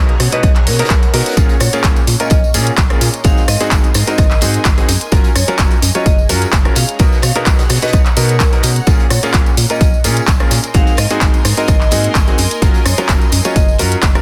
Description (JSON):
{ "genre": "piano house", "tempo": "128 BPM", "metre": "4/4", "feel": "swing 53% on 16ths", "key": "Bb minor", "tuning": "A4 = 440 Hz", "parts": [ { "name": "clear concert grand piano", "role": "riff", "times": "0.0-14.2 s", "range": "Ab2 to Db5", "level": "-22 LUFS", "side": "equal", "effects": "sidechain pumping" }, { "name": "organ-like FM bass", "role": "bass", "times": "0.0-14.2 s", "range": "Gb1 to B2", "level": "-19 LUFS", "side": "equal", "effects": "sidechain pumping" }, { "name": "granular cloud pad", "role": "texture", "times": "0.0-14.2 s", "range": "Ab4 to C6", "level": "-29 LUFS", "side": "equal", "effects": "built-in reverb, sidechain pumping" }, { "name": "house drum kit", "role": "drums", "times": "0.1-14.2 s", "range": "handclaps, hi-hat, rim click", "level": "-20 LUFS", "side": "equal", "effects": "overdrive" }, { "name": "oversized low-tuned drum kit", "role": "drums", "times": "0.2-14.1 s", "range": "hi-hat, snare drum", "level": "-32 LUFS", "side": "equal", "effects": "none" }, { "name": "vibraphone with hard mallets", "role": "melody", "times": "0.3-13.6 s", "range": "A#4 to F5", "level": "-26 LUFS", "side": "equal", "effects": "dub echo" }, { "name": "electronic kick drum", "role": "drums", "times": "0.4-14.1 s", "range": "none", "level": "-15 LUFS", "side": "equal", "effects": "overdrive" }, { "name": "tambourine", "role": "percussion", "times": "1.4-14.2 s", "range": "none", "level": "-29 LUFS", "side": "equal", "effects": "none" } ], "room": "small room ambience", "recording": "dense, heavily limited modern master", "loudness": "-13 LUFS", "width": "mono", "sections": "0.0-14.2 A section", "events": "none", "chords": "0.0 Bmaj7; 1.4 Bbm7; 3.2 Ab7; 4.9 Gbmaj7; 6.8 Bmaj7; 8.9 Bbm7; 10.7 Ab7; 12.4 Gbmaj7" }